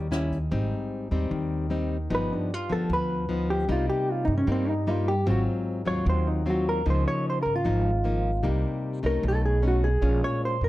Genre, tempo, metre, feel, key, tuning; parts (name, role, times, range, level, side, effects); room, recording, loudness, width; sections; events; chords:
bossa nova; 152 BPM; 4/4; straight; Ab major; A4 = 440 Hz
nylon-string guitar; accompaniment; 0.0-10.7 s; G2 to F4; -28 LUFS; left 2 dB
upright bass; bass; 0.0-10.7 s; G1 to G2; -27 LUFS; right 1 dB
hollow-body jazz guitar; melody; 2.1-10.7 s; C4 to Db5; -28 LUFS; right 1 dB; plate reverb
moderate small room reverb, RT60 0.5 s; dark, warm production; -23 LUFS; side -16 dB against mid
0.5-10.7 A section
hollow-body jazz guitar solo 0.5-10.7
0.0 Eb7b9; 0.5 Abmaj7; 2.1 G7b13; 3.7 Cm7; 5.3 Ab6; 6.9 Db69; 8.4 Cm7; 9.2 B9; 10.0 Bbm7